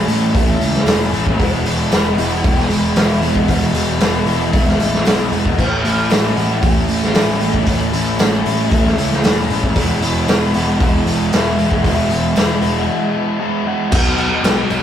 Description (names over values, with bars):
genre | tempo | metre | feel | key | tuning
rock, shoegaze and dream pop | 115 BPM | 4/4 | straight | unclear | A4 = 444 Hz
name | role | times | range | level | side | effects
electric guitar through a small old amp | melody | 0.0-14.8 s | C#5 to G#5 | -27 LUFS | left 2 dB | spring reverb
crunchy overdriven guitar | riff | 0.0-14.8 s | E2 to F#4 | -20 LUFS | left 4 dB | none
crunchy overdriven guitar | riff | 0.0-14.8 s | A2 to E4 | -28 LUFS | left 1 dB | none
overdriven electric guitar | riff | 0.0-14.8 s | A2 to E4 | -21 LUFS | right 4 dB | none
fuzz picked electric bass | bass | 0.0-14.8 s | E1 to C#2 | -20 LUFS | equal | overdrive
raw garage drum kit | drums | 0.1-14.8 s | crash cymbal, hi-hat, kick drum, snare drum | -17 LUFS | equal | none
tambourine | percussion | 0.9-14.8 s | none | -37 LUFS | right 6 dB | none
room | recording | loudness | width
wet stone room reverb, RT60 0.9 s | rough rehearsal-room recording, warm saturation | -13 LUFS | side -10 dB against mid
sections
0.0-13.9 A section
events
break 12.9-13.9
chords
0.0 A; 1.4 E; 5.6 A; 9.8 E; 13.9 B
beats
0.34 0.87 | 1.39 1.92 2.44 2.96 | 3.49 4.01 4.54 5.06 | 5.58 6.11 6.63 7.15 | 7.67 8.20 8.72 9.24 | 9.76 10.28 10.80 11.32 | 11.84 12.36 12.88 13.40 | 13.92 14.44